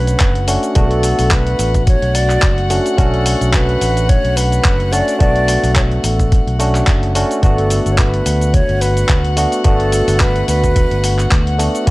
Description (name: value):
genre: nu-disco, nu disco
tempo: 108 BPM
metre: 4/4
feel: swing 55% on 16ths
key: unclear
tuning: A4 = 440 Hz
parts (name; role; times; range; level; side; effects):
- breathy mellow concert flute; melody; 0.0-11.9 s; A4 to D5; -21 LUFS; right 1 dB; analog delay
- barky tine electric piano; accompaniment; 0.0-11.9 s; A3 to F#4; -19 LUFS; equal; overdrive, vintage 12-bit sampler grit
- rich chamber string section; sustained chords; 0.0-11.9 s; F#4 to F#5; -24 LUFS; left 2 dB; sidechain pumping
- fingered electric bass; bass; 0.0-11.9 s; F#1 to D2; -17 LUFS; equal; tube saturation
- dusty soul sampler-style drum kit; drums; 0.1-11.9 s; handclaps, hi-hat, shaker; -22 LUFS; equal; studio reverb
- electronic kick drum; drums; 0.2-11.9 s; none; -14 LUFS; equal; studio reverb
room: little or no reverb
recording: dry, gritty hardware recording, cassette tape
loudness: -12 LUFS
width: side -20 dB against mid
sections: 0.0-11.9 A section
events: none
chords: 0.0 Bm9; 7.4 Gmaj9